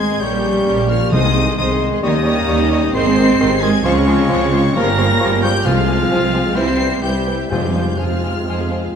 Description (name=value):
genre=classical, dramatic, fast romantic movement for symphony orchestra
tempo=132 BPM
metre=4/4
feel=rubato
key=F minor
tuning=A4 = 440 Hz
part: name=rich symphonic violin section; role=melody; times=0.0-8.9 s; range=Db6 to C7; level=-24 LUFS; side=left 2 dB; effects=none
part: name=concert flute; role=second line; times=0.0-8.8 s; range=G5 to Db6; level=-30 LUFS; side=left 4 dB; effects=none
part: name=rich symphonic violin section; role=second line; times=0.0-8.9 s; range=E4 to F5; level=-29 LUFS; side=left 5 dB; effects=none
part: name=warm clarinet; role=second line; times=0.0-8.9 s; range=Db4 to C5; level=-24 LUFS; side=left 1 dB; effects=none
part: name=warm oboe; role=second line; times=0.0-8.9 s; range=Db5 to C6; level=-27 LUFS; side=right 1 dB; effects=none
part: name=rich studio viola section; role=accompaniment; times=0.0-8.9 s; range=F3 to Ab4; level=-24 LUFS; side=right 2 dB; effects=none
part: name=warm bassoon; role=accompaniment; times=0.0-8.8 s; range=Eb3 to Ab3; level=-24 LUFS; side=equal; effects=none
part: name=mellow French horn section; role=sustained chords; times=0.0-9.0 s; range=Bb3 to Ab4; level=-24 LUFS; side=left 4 dB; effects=none
part: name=warm trombone section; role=sustained chords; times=0.0-9.0 s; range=C3 to Bb3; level=-26 LUFS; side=right 2 dB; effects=none
part: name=dark symphonic cello section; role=bass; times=0.0-8.9 s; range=Db3 to C4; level=-21 LUFS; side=right 3 dB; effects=none
part: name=rich symphonic double bass section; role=bass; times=0.0-8.9 s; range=G1 to F2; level=-21 LUFS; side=right 2 dB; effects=none
part: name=timpani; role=percussion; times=1.1-1.8, 5.7-8.2 s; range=F2 to C3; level=-22 LUFS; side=left 3 dB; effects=none
room=moderate scoring stage reverb, RT60 1.7 s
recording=none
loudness=-13 LUFS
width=side -7 dB against mid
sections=0.0-9.0 A section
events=none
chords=0.2 Gdim/Bb; 1.1 Ab/C; 2.0 Eb7; 3.0 Ab; 3.9 Dbmaj7; 4.8 Gm7b5; 5.7 Fm/C; 6.6 C; 7.5 Fm